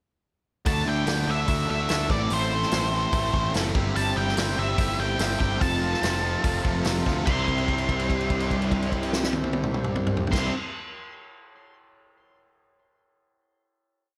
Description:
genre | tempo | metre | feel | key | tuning
classic rock | 145 BPM | 4/4 | straight | C major | A4 = 440 Hz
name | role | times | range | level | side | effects
octave-fuzz lead guitar | melody | 0.7-10.5 s | C5 to C6 | -31 LUFS | equal | distortion, digital delay
tonewheel organ | sustained chords | 0.7-10.5 s | C4 to D5 | -43 LUFS | equal | none
distorted electric guitar | riff | 0.7-10.5 s | A2 to A4 | -33 LUFS | equal | overdrive
overdriven semi-hollow guitar | riff | 0.7-10.5 s | F2 to D4 | -33 LUFS | equal | none
fuzz picked electric bass | bass | 0.7-10.5 s | F1 to D2 | -31 LUFS | equal | overdrive
vintage drum kit | drums | 0.7-10.4 s | crash cymbal, hi-hat, kick drum, snare drum, toms | -30 LUFS | equal | none
room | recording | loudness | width
moderate studio reverb, RT60 0.9 s | none | -25 LUFS | mono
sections
0.7-7.3 pre-chorus; 7.3-10.6 final chord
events
held note 7.3-10.3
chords
0.7 Dsus2; 2.1 Am; 3.8 C/G; 5.6 F; 7.3 Cadd9

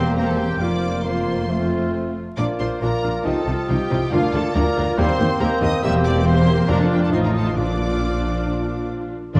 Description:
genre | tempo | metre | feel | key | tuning
quick classical-period movement for symphony orchestra | 137 BPM | 4/4 | straight | Bb major | A4 = 440 Hz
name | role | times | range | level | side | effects
rich studio violin section | melody | 0.0-9.4 s | D5 to E6 | -36 LUFS | equal | none
mellow cor anglais | second line | 0.0-9.4 s | F4 to Eb5 | -34 LUFS | equal | none
mellow hollow large flute ensemble | second line | 0.0-9.4 s | D6 to G6 | -38 LUFS | equal | none
rich studio violin section | second line | 0.0-9.4 s | F4 to E5 | -34 LUFS | equal | none
warm clarinet | second line | 0.0-9.4 s | C4 to D5 | -32 LUFS | equal | none
mellow bassoon | accompaniment | 0.0-9.4 s | F3 to D4 | -30 LUFS | equal | none
rich studio viola section | accompaniment | 0.0-9.4 s | A3 to G4 | -29 LUFS | equal | none
mellow French horn section | sustained chords | 0.0-8.6 s | F3 to Eb4 | -32 LUFS | equal | none
rich studio cello section | bass | 0.0-9.4 s | D2 to D4 | -26 LUFS | equal | none
rich studio double bass section | bass | 0.0-9.4 s | E1 to Eb2 | -27 LUFS | equal | none
timpani | percussion | 6.7-9.4 s | F2 to Bb2 | -27 LUFS | equal | none
room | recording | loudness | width
moderate scoring stage reverb, RT60 1.9 s | dark, warm production, vinyl crackle | -20 LUFS | mono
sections
0.0-9.3 A section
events
none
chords
0.0 C7/E; 0.6 Fsus4; 1.5 F; 2.4 Bb; 3.3 F7/C; 4.1 Bb/D; 5.0 Cm7/Eb; 5.8 C7/E; 6.7 Bb/F; 7.1 F7/A; 7.6 Bb

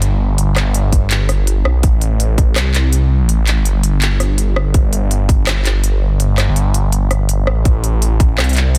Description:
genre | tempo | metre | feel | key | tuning
half-time drum and bass | 165 BPM | 4/4 | swing 59% on 16ths, half-time | unclear | A4 = 440 Hz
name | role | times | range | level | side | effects
phased detuned saw bass | bass | 0.0-8.8 s | G1 to C2 | -16 LUFS | equal | phaser
drum and bass drum kit | drums | 0.0-8.8 s | handclaps, hi-hat, rim click | -23 LUFS | equal | none
electronic kick drum | drums | 0.9-2.5, 4.7-5.4, 7.7-8.3 s | none | -15 LUFS | equal | none
room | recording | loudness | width
little or no reverb | dense, heavily limited modern master | -15 LUFS | mono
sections
0.0-8.8 A section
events
kick drops out 1.1-1.8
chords
none

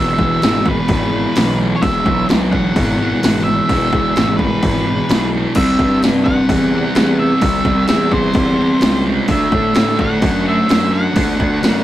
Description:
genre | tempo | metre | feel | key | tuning
garage rock duo or trio | 128 BPM | 4/4 | straight | unclear | A4 = 440 Hz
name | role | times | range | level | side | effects
octave-fuzz lead guitar | melody | 0.0-11.8 s | B4 to F#5 | -21 LUFS | right 1 dB | distortion
fuzz guitar | riff | 0.0-11.8 s | E2 to D4 | -17 LUFS | equal | distortion
fuzz picked electric bass | bass | 0.0-11.8 s | E1 to A2 | -19 LUFS | equal | overdrive
punchy analog drum machine | drums | 0.2-11.8 s | crash cymbal, hi-hat, kick drum, snare drum | -17 LUFS | equal | overdrive
room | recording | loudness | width
light reverb | rough rehearsal-room recording | -12 LUFS | side -13 dB against mid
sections
0.0-11.8 A section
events
none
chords
0.0 E; 5.6 C; 9.3 D

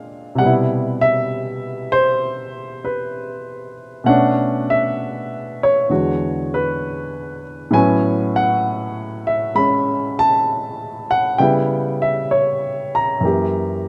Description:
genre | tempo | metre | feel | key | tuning
solo jazz | 66 BPM | 4/4 | swing 69% on 8ths | A major | A4 = 440 Hz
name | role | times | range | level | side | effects
warm baby grand piano | solo | 0.0-13.9 s | E2 to B5 | -19 LUFS | equal | none
room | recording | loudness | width
light reverb | rough home demo mix | -19 LUFS | mono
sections
0.0-13.9 A section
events
none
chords
0.4 Cmaj7; 4.1 Bm9; 5.9 E9; 7.7 A69; 11.4 C#m7b5; 13.2 F#7b9

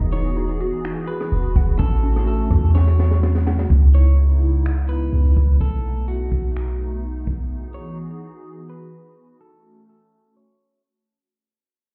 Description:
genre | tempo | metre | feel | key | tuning
hip hop, atmospheric cloud-rap | 126 BPM | 4/4 | half-time | unclear | A4 = 440 Hz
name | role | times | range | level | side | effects
hollow soft pad | sustained chords | 0.0-11.3 s | C#3 to D#5 | -32 LUFS | equal | ensemble chorus, sidechain pumping
mallet-like synth pluck | arpeggios | 0.0-3.7 s | C#4 to F#5 | -33 LUFS | equal | chorus, phaser, digital delay
clean 808-style bass | bass | 0.0-7.5 s | D#1 to E2 | -19 LUFS | equal | none
electric guitar at the edge of break-up | melody | 0.1-10.8 s | F#4 to C#5 | -37 LUFS | equal | digital delay
jazz brush drum kit | drums | 0.1-7.4 s | finger snaps, hi-hat, kick drum, rim click, snare drum | -25 LUFS | equal | none
room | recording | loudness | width
studio reverb | heard muffled through a wall, club reverb, EQ, low-pass filter | -19 LUFS | mono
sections
0.0-3.7 A section; 3.7-11.3 B section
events
drum fill 2.7-3.7; fade-out 3.7-11.3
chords
0.0 Emaj9; 1.8 A6; 3.7 C#m9; 5.6 B7; 7.5 Emaj9; 9.4 A6

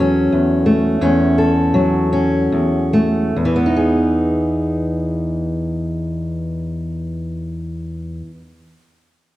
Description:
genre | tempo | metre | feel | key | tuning
folk | 69-91 BPM | 3/4 | straight | E major | A4 = 440 Hz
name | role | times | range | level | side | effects
fingerpicked steel-string acoustic guitar | accompaniment | 0.0-8.6 s | E2 to A4 | -16 LUFS | equal | none
room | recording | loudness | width
wet recital hall reverb, RT60 1.4 s | dark, warm production | -15 LUFS | side -15 dB against mid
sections
0.0-3.4 A section; 3.4-8.6 B section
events
slowing down 0.0-3.4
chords
0.0 F#m/E; 3.4 Emaj7

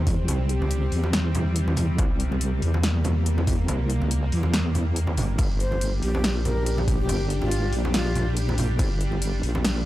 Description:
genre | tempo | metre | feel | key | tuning
deep dubstep | 141 BPM | 4/4 | swing 55% on 16ths, half-time | unclear | A4 = 440 Hz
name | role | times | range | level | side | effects
bowed-like drone | sustained chords | 0.0-9.9 s | C3 to G4 | -31 LUFS | equal | built-in reverb
deep soft wobble bass | bass | 0.0-9.9 s | G1 to E2 | -24 LUFS | equal | chorus
deep house drum kit | drums | 0.1-9.7 s | crash cymbal, hi-hat, snare drum | -30 LUFS | equal | overdrive
electronic kick drum | drums | 0.1-8.9 s | none | -24 LUFS | equal | overdrive
congas | percussion | 0.1-9.6 s | none | -32 LUFS | right 1 dB | dub echo
breathy shakuhachi | melody | 0.5-1.1, 5.6-8.3 s | F4 to C5 | -34 LUFS | equal | dub echo
room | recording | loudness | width
little or no reverb | dry, gritty hardware recording, transformer saturation | -21 LUFS | side -15 dB against mid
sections
0.0-9.9 A section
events
none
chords
0.0 C; 5.4 Gm

